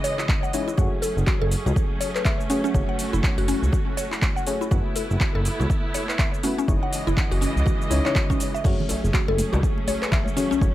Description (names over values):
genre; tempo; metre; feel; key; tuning
afro house; 122 BPM; 4/4; swing 59% on 16ths; F# dorian; A4 = 440 Hz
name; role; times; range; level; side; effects
clear symphonic string section; sustained chords; 0.0-10.7 s; C#3 to D#5; -31 LUFS; right 2 dB; sidechain pumping
mallet-like synth pluck; arpeggios; 0.0-10.6 s; C#4 to F#5; -28 LUFS; left 2 dB; chorus, phaser, sidechain pumping, tape echo
deep mellow chord stab; stabs; 0.0-10.7 s; G#3 to C#5; -30 LUFS; left 3 dB; chorus, sidechain pumping, dub echo
afro-pop drum kit; drums; 0.0-10.7 s; crash cymbal, handclaps, hi-hat, shaker; -30 LUFS; equal; studio reverb
electronic kick drum; drums; 0.3-10.7 s; none; -23 LUFS; equal; overdrive, studio reverb
smooth gliding synth bass; bass; 0.8-10.7 s; F#1 to C#2; -23 LUFS; equal; sidechain pumping
congas; percussion; 8.6-10.7 s; none; -33 LUFS; right 3 dB; dub echo
djembe; percussion; 8.7-10.6 s; none; -33 LUFS; left 1 dB; none
room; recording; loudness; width
little or no reverb; echo-heavy mix; -20 LUFS; side -14 dB against mid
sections
0.0-10.7 A section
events
none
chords
0.0 C#madd9; 0.8 F#madd9; 4.7 B7sus4/F#; 6.7 C#madd9/F#; 8.6 F#madd9